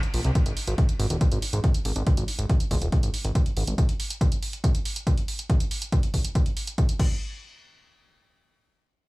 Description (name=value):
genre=uplifting trance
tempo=140 BPM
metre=4/4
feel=straight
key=unclear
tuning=A4 = 441 Hz
part: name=punchy analog drum machine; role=drums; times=0.0-7.1 s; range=crash cymbal, hi-hat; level=-34 LUFS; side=right 2 dB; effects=sidechain pumping on hats, sidechain pumping on cymbals
part: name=fat analog bass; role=bass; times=0.1-3.7 s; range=Eb1 to C2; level=-25 LUFS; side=equal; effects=sidechain pumping
part: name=electronic kick drum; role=drums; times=0.4-7.1 s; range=none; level=-23 LUFS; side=equal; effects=none
room=little or no reverb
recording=small room ambience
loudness=-22 LUFS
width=side -22 dB against mid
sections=0.0-7.2 A section; 7.2-9.1 B section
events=none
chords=none